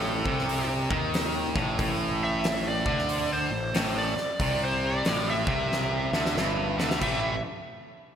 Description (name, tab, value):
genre	blues rock power trio and southern rock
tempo	92 BPM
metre	4/4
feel	swing 64% on 8ths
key	A minor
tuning	A4 = 444 Hz
part	overdriven slide guitar	melody	0.0-7.4 s	A4 to E5	-30 LUFS	right 1 dB	none
part	distorted electric guitar	riff	0.0-7.3 s	G2 to A3	-29 LUFS	right 1 dB	overdrive, slapback echo
part	fuzz picked electric bass	bass	0.0-7.4 s	G1 to D#2	-32 LUFS	equal	overdrive
part	huge arena drum kit	drums	0.3-7.2 s	crash cymbal, hi-hat, kick drum, snare drum	-30 LUFS	left 1 dB	none
room	moderate lush hall reverb, RT60 2.2 s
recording	big arena sound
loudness	-24 LUFS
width	side -8 dB against mid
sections	0.0-7.0 A section; 7.0-8.2 B section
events	drum fill 5.7-7.0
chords	0.0 Am; 7.0 A5